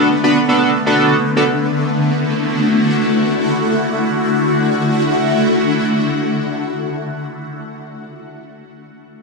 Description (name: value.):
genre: pop.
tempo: free time.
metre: none.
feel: none.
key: D major.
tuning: A4 = 440 Hz.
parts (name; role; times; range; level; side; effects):
chorused polysynth; accompaniment; 0.0-1.4 s; B3 to B4; -13 LUFS; right 1 dB; slapback echo.
shimmering ambient pad; sustained chords; 0.0-6.9 s; D3 to F#4; -16 LUFS; left 1 dB; chorus, built-in reverb, phaser.
room: wet club reverb, RT60 0.7 s.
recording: live gig heard through the venue's PA, club reverb.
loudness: -13 LUFS.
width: side -2 dB against mid.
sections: 0.0-3.5 A section; 3.5-7.5 B section.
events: none.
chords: 0.0 Bm7; 1.5 Dadd9.